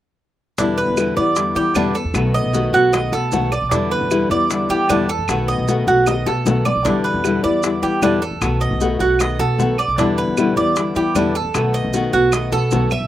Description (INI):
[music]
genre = latin, Cuban son and guajira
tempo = 153 BPM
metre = 4/4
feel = straight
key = E minor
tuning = A4 = 439 Hz
[part]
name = nylon-string guitar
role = accompaniment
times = 0.6-12.9 s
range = B2 to F#4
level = -20 LUFS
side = left 4 dB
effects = none
[part]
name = Cuban tres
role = arpeggios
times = 0.6-13.1 s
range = D4 to E5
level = -19 LUFS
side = right 4 dB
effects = none
[part]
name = upright bass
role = bass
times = 0.6-13.1 s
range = B1 to E3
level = -23 LUFS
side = equal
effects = none
[part]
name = bongos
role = percussion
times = 0.6-13.1 s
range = none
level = -25 LUFS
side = left 6 dB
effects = slapback echo
[part]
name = maracas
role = percussion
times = 0.6-13.1 s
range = none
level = -32 LUFS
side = right 6 dB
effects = none
[part]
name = claves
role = percussion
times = 1.0-13.1 s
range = none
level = -31 LUFS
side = right 2 dB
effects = slapback echo
[sound]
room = little or no reverb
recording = recorded outdoors, with no room sound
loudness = -15 LUFS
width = side -12 dB against mid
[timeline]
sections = 0.6-13.1 A section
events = drum fill 6.1-6.9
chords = 0.6 Em7; 2.2 B7; 3.7 Em7; 5.3 B7; 6.9 Em7; 8.4 B7; 10.0 Em7; 11.5 B7